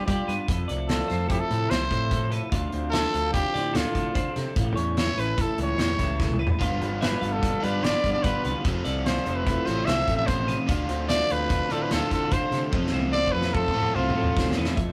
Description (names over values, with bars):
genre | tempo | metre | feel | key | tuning
math rock and midwest emo | 147 BPM | 5/4 | straight | F lydian | A4 = 444 Hz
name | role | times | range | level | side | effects
growling trumpet | melody | 0.0-14.6 s | F4 to E5 | -30 LUFS | equal | none
twelve-string electric guitar | accompaniment | 0.0-14.9 s | F2 to A4 | -34 LUFS | equal | none
twelve-string electric guitar | arpeggios | 0.0-14.9 s | A4 to F5 | -37 LUFS | equal | none
fuzz fingered electric bass | bass | 0.1-14.8 s | F1 to G3 | -32 LUFS | equal | overdrive
loose indie drum kit | drums | 0.1-14.9 s | hi-hat, kick drum, snare drum, toms | -30 LUFS | equal | none
overdriven electric guitar | riff | 6.6-14.8 s | G2 to F4 | -33 LUFS | equal | none
room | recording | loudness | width
moderate studio reverb, RT60 0.5 s | rough rehearsal-room recording | -25 LUFS | mono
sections
0.0-14.8 A section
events
drum fill 6.2-6.6, 12.7-14.8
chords
0.5 Fmaj7; 2.5 Dm7; 4.6 A7; 6.6 G7; 8.6 Fmaj7; 10.7 Dm7; 12.7 F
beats
0.07 | 0.48 0.89 1.29 1.70 2.11 | 2.52 2.93 3.34 3.75 4.15 | 4.56 4.97 5.38 5.79 6.20 | 6.60 7.01 7.42 7.83 8.24 | 8.65 9.05 9.46 9.87 10.28 | 10.69 11.10 11.50 11.91 12.32 | 12.73 13.13 13.54 13.95 14.36 | 14.76